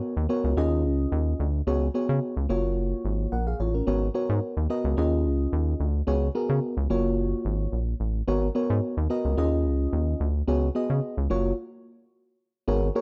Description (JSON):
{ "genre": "early-eighties boogie funk", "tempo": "109 BPM", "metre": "4/4", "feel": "straight", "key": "unclear", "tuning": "A4 = 440 Hz", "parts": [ { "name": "mellow FM electric piano", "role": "accompaniment", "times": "0.0-13.0 s", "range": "A#3 to F#5", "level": "-29 LUFS", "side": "equal", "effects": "chorus" }, { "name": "rubbery square bass", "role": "bass", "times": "0.2-12.9 s", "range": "F#1 to C#3", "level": "-28 LUFS", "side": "equal", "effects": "none" } ], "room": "light reverb", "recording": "none", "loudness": "-26 LUFS", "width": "mono", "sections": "0.0-12.7 A section", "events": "stop 11.6-12.7", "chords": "0.0 G#m11 (rootless); 0.6 D#9sus4; 1.7 C#7sus4; 2.5 F#maj7; 3.9 G#m11; 5.0 D#9sus4; 6.1 C#7sus4; 6.9 F#maj7; 8.3 G#m11; 9.4 D#9sus4; 10.5 C#7sus4; 11.3 F#maj7", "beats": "0.02 0.57 1.12 | 1.67 2.22 2.77 3.32 | 3.87 4.42 4.97 5.53 | 6.08 6.63 7.18 7.73 | 8.28 8.83 9.38 9.93 | 10.48 11.03 11.58 12.13 | 12.68" }